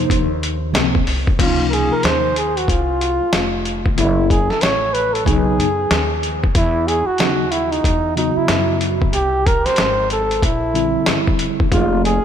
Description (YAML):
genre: hip hop, jazz-hop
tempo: 93 BPM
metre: 4/4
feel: swing 62% on 16ths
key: unclear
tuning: A4 = 440 Hz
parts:
  - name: breathy flugelhorn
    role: melody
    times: 0.0-12.2 s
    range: Eb4 to Db5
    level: -19 LUFS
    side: right 1 dB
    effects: analog delay
  - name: mellow tine electric piano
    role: accompaniment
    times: 0.0-12.1 s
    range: C3 to Ab4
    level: -22 LUFS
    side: left 1 dB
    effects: medium stereo tremolo
  - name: upright bass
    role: bass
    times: 0.0-12.2 s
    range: F1 to Gb2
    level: -23 LUFS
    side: left 1 dB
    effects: none
  - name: dusty soul sampler-style drum kit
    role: drums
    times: 0.1-12.2 s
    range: crash cymbal, hi-hat, kick drum, snare drum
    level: -19 LUFS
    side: equal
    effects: overdrive
room: moderate lush hall reverb, RT60 2.6 s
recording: dreamy mix soaked in reverb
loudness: -15 LUFS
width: side -8 dB against mid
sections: 0.0-1.4 A section; 1.4-12.2 B section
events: none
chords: 0.0 Dbmaj9; 4.0 Gbm7; 5.3 Cb69; 6.6 Esus2; 9.1 C7b13; 11.7 Fm7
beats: 0.10 0.75 | 1.39 2.04 2.68 3.33 | 3.97 4.62 5.26 5.91 | 6.55 7.20 7.84 8.49 | 9.14 9.78 10.43 11.07 | 11.72